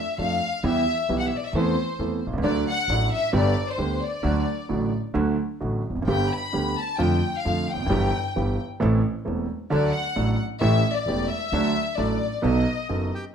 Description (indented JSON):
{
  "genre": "tango",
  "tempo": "132 BPM",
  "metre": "4/4",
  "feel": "rubato",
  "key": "unclear",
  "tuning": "A4 = 441 Hz",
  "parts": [
    { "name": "warm chamber violin section", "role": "second line", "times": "0.0-13.1 s", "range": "C5 to B5", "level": "-27 LUFS", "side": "left 4 dB", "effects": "none" },
    { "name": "clear concert grand piano", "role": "accompaniment", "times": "0.2-13.1 s", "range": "E1 to A4", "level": "-24 LUFS", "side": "right 2 dB", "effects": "none" },
    { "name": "upright bass", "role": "bass", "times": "0.2-13.1 s", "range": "E1 to F2", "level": "-28 LUFS", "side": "equal", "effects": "none" },
    { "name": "bandoneon", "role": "melody", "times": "13.1-13.2 s", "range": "G4 to G5", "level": "-37 LUFS", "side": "right 1 dB", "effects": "none" }
  ],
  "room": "moderate large studio reverb, RT60 0.8 s",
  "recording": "none",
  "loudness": "-22 LUFS",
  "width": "side -7 dB against mid",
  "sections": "0.0-13.3 A section",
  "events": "violin section solo 0.0-13.3",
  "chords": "0.0 Dm/F; 0.6 Em; 1.5 Am/E; 2.4 D; 3.3 G; 4.2 D; 6.1 G; 7.0 Dm/F; 7.9 Em/G; 8.8 Am; 9.7 D; 10.6 A7; 11.5 D; 12.4 B7"
}